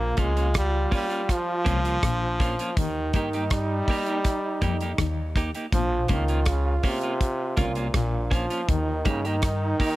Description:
roots reggae; 81 BPM; 4/4; straight; Bb dorian; A4 = 442 Hz
brilliant trombone; melody; 0.0-10.0 s; Bb2 to Bb3; -28 LUFS; equal; tape echo
growling trombone; second line; 0.0-10.0 s; Eb4 to F4; -33 LUFS; right 4 dB; tape echo
clean electric guitar; riff; 0.0-9.3 s; Bb2 to G3; -34 LUFS; left 6 dB; tremolo
upright bass; bass; 0.0-9.7 s; Bb1 to G2; -27 LUFS; equal
clean electric guitar; accompaniment; 0.2-9.9 s; Bb3 to G4; -33 LUFS; right 2 dB; tape echo
damped 70s drum kit; drums; 0.2-10.0 s; hi-hat, kick drum, rim click; -25 LUFS; equal
small room reverb; -22 LUFS; side -17 dB against mid
0.0-10.0 A section
0.0 Bbm; 2.8 Eb; 5.7 Bbm; 8.7 Eb
0.55 1.29 2.03 | 2.77 3.51 4.25 4.99 | 5.72 6.46 7.20 7.94 | 8.68 9.43

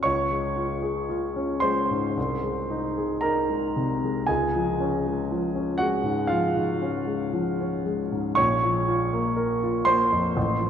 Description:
classical, romantic nocturne for solo piano; 56-62 BPM; 4/4; rubato; Db major; A4 = 440 Hz
warm grand piano; solo; 0.0-10.7 s; A1 to Db6; -22 LUFS; equal
wet cathedral reverb, RT60 5.3 s; in a vast, echoing space; -23 LUFS; side -8 dB against mid
0.0-10.7 A section
0.0 Db; 2.2 Ab/C; 4.3 Db; 8.4 Bbm
| 0.05 1.10 2.17 3.23 | 4.28 5.30 6.32 7.36 | 8.38 9.38 10.36

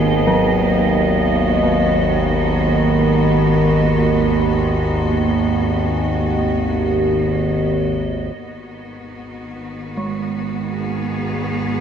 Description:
dark ambient drone; free time; G# minor; A4 = 436 Hz
bright studio cello section; sustained chords; 0.0-11.8 s; G#2 to G#4; -25 LUFS; equal
gamelan-type bronze metallophone; arpeggios; 0.0-11.8 s; F#3 to D#4; -23 LUFS; right 2 dB; tape echo
overtone-sweeping drone; drone; 0.0-11.8 s; G#1 to D#2; -17 LUFS; equal; chorus, built-in reverb
icy glass pad; texture; 0.0-8.4 s; D#5; -26 LUFS; right 3 dB; chorus, built-in reverb
wet plate reverb, RT60 2.8 s; echo-heavy mix; -15 LUFS; side -8 dB against mid
0.0-8.4 A section; 8.4-11.8 B section
fade-out on cello section 0.0-8.4; fade-in on synth drone 8.4-11.8
0.0 G#m
free time

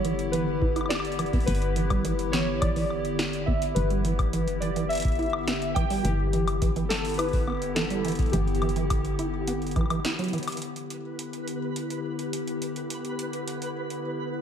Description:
IDM; 105 BPM; 4/4; straight; A4 = 440 Hz
warbly lo-fi synth keys; melody; 0.0-10.0 s; G4 to G5; -31 LUFS; left 1 dB; chorus, slapback echo, tape echo
warbly tape-like pad; sustained chords; 0.0-14.4 s; D3 to G4; -32 LUFS; left 2 dB; chorus, built-in reverb, phaser
deep acid bass; arpeggios; 0.0-10.4 s; E3 to E4; -31 LUFS; right 4 dB; slapback echo, ping-pong delay
woody FM bass; bass; 0.0-10.0 s; G1; -31 LUFS; equal
electro analog drum machine; drums; 0.0-14.0 s; hi-hat, snare drum, woodblock; -33 LUFS; left 2 dB; slapback echo
electronic kick drum; drums; 0.6-9.9 s; -27 LUFS; equal
twinkling granular texture; texture; 10.9-14.4 s; B4; -38 LUFS; right 2 dB; built-in reverb
moderate lush hall reverb, RT60 1.9 s, digital ambience; big arena sound; -25 LUFS; side -8 dB against mid
0.0-10.6 A section; 10.6-14.4 B section
0.0 G6; 6.0 Em7/G; 10.6 G6
0.33 0.90 | 1.48 2.05 2.62 3.19 | 3.76 4.33 4.90 5.47 | 6.05 6.62 7.19 7.76 | 8.33 8.90 9.47 10.05 | 10.62 11.19 11.76 12.33 | 12.90 13.47 14.05

